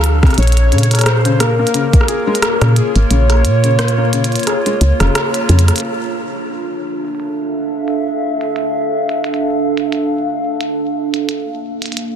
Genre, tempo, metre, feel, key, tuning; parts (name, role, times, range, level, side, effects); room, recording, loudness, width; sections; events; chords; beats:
IDM; 88 BPM; 4/4; swing 56% on 16ths; A4 = 440 Hz
warbly tape-like pad; sustained chords; 0.0-12.2 s; Bb3 to F5; -19 LUFS; right 1 dB; chorus, built-in reverb, vintage 12-bit sampler grit, sidechain pumping
woody FM bass; bass; 0.0-5.7 s; F1 to Bb2; -12 LUFS; equal; tube saturation
glitchy drum kit; drums; 0.0-12.1 s; hi-hat, rim click; -20 LUFS; equal; soft clipping on snare, low-pass filter on snare, low-pass filter on hats, low-pass filter on room
felt-muted upright piano; arpeggios; 0.2-5.6 s; C3 to Ab4; -21 LUFS; left 4 dB; ping-pong delay
electronic kick drum; drums; 0.2-2.1 s; -10 LUFS; equal
warbly nostalgic lead; melody; 0.4-5.5 s; Ab4 to Db5; -21 LUFS; equal; lush chorus, tape echo
light reverb; dense, heavily limited modern master; -13 LUFS; side -8 dB against mid
0.0-5.8 A section; 5.8-12.2 B section
kick drops out 3.1-5.8; band accent 5.2-5.5; drum fill 5.5-5.8; filter sweep on drum 5.8-12.2; filter sweep on ambient pad 5.8-12.2
0.4 Bbm; 5.8 Dm; 11.3 Bbm
| 0.38 1.06 1.74 2.42 | 3.11 3.79 4.47 5.15 | 5.83 6.52 7.20 7.88 | 8.56 9.24 9.93 10.61 | 11.29 11.97